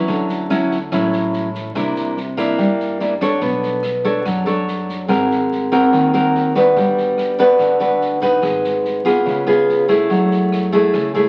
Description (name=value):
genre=bossa nova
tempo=144 BPM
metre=4/4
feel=straight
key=unclear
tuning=A4 = 440 Hz
part: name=nylon-string guitar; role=accompaniment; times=0.0-11.3 s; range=A2 to C#5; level=-17 LUFS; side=equal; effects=none
part: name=upright bass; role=bass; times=0.0-11.3 s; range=G1 to G2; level=-33 LUFS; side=equal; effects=none
part: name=swinging big-band drum kit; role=drums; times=0.1-11.2 s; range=kick drum, rim click, snare drum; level=-35 LUFS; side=equal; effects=none
room=wet large studio reverb, RT60 1.3 s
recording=very old 78 rpm record, vinyl crackle, nothing above 11.0 kHz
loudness=-17 LUFS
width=mono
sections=0.0-11.3 A section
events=none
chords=0.1 Dmaj9; 1.8 C9; 3.4 Bm9; 5.1 G#9; 6.8 Gmaj7; 8.4 G#m7; 9.3 C#7; 10.1 F#m9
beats=| 0.09 0.50 0.92 1.34 | 1.75 2.17 2.59 3.00 | 3.42 3.84 4.26 4.67 | 5.09 5.51 5.93 6.34 | 6.76 7.18 7.59 8.01 | 8.43 8.85 9.27 9.68 | 10.10 10.52 10.94